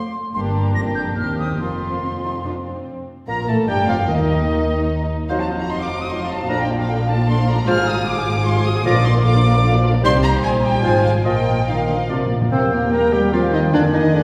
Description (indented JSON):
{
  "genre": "quick classical-period movement for symphony orchestra",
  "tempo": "149 BPM",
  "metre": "3/4",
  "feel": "rubato",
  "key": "Bb major, Eb major from 7.7 s",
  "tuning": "A4 = 445 Hz",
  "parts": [
    { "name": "rich studio violin section", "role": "melody", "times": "0.0-14.2 s", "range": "F4 to F6", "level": "-29 LUFS", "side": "equal", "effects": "none" },
    { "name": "bright concert flute", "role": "second line", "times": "0.0-14.2 s", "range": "Bb4 to Bb6", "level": "-30 LUFS", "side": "equal", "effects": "none" },
    { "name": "dark studio violin section", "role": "second line", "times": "0.0-14.2 s", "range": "C4 to Bb5", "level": "-29 LUFS", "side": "equal", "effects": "none" },
    { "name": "dark studio viola section", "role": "accompaniment", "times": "0.0-14.2 s", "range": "D3 to Ab4", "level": "-28 LUFS", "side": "equal", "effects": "none" },
    { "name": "warm studio cello section", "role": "bass", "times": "0.3-14.2 s", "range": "Eb2 to Bb3", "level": "-25 LUFS", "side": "equal", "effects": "none" },
    { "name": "dark studio double bass section", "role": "bass", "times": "0.4-14.2 s", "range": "F1 to F2", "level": "-25 LUFS", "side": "equal", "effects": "none" },
    { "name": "clear clarinet", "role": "second line", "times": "3.3-14.2 s", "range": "Bb3 to Bb4", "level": "-27 LUFS", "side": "equal", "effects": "none" },
    { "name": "clear oboe", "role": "second line", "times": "3.3-14.2 s", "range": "Bb4 to Bb5", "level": "-31 LUFS", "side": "equal", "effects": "none" },
    { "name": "mellow bassoon", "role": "accompaniment", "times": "3.3-14.2 s", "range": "Eb3 to Bb3", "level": "-29 LUFS", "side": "equal", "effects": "none" },
    { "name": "timpani", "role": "percussion", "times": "4.1-4.7, 8.9-9.4, 12.1-12.5 s", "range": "Bb2 to Eb3", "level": "-28 LUFS", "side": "equal", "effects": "none" },
    { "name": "mellow French horn section", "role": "sustained chords", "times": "12.5-14.2 s", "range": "Bb2 to Bb3", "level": "-27 LUFS", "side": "equal", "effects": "none" }
  ],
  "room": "wet concert hall reverb, RT60 2.1 s",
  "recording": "heard from further back in the room",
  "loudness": "-18 LUFS",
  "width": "mono",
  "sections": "0.0-2.9 A section; 2.9-12.5 B section; 12.5-14.2 C section",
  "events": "timpani fill 12.1-12.5",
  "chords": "0.3 Gm; 1.2 Cm7/Eb; 1.6 Fsus4; 2.5 F5; 2.9 Bb5; 4.1 N.C.; 5.3 F5; 6.5 Bb; 7.7 Fm/Ab; 8.9 Bb; 10.0 Cm; 10.8 Fm/Ab; 11.3 Bbsus4; 12.1 Bb; 12.5 Eb",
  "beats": "| 0.35 0.75 1.16 | 1.59 2.02 2.45 | 2.88 3.28 3.68 | 4.09 4.49 4.89 | 5.29 5.70 6.09 | 6.49 6.88 7.28 | 7.67 8.06 8.46 | 8.86 9.25 9.65 | 10.04 10.44 10.85 | 11.26 11.68 12.10 | 12.52 12.92 13.33 | 13.73 14.14"
}